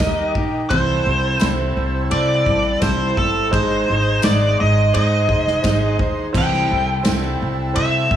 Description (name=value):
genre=folk rock and heartland rock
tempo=85 BPM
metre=4/4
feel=straight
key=unclear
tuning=A4 = 441 Hz
part: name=nasal lead guitar with a parked wah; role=melody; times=0.0-8.2 s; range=A4 to G5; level=-20 LUFS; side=equal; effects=overdrive, tape echo
part: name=picked steel-string acoustic guitar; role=accompaniment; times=0.0-8.2 s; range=C3 to C5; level=-24 LUFS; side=left 2 dB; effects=none
part: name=warm baby grand piano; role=accompaniment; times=0.0-8.2 s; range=Eb4 to B5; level=-29 LUFS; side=right 7 dB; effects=none
part: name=accordion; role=sustained chords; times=0.0-8.2 s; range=Ab3 to C5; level=-29 LUFS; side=right 2 dB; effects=none
part: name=upright bass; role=bass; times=0.0-8.2 s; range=F1 to C3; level=-21 LUFS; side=equal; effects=none
part: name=natural country drum kit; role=drums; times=0.0-8.2 s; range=crash cymbal, kick drum, ride cymbal, snare drum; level=-24 LUFS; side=equal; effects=none
part: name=tambourine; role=percussion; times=1.4-7.2 s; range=none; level=-36 LUFS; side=right 9 dB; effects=none
room=studio reverb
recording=small room reverb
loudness=-16 LUFS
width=side -10 dB against mid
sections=0.0-8.2 A section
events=none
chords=0.0 Eb; 0.7 C6; 3.5 Ab; 6.3 C6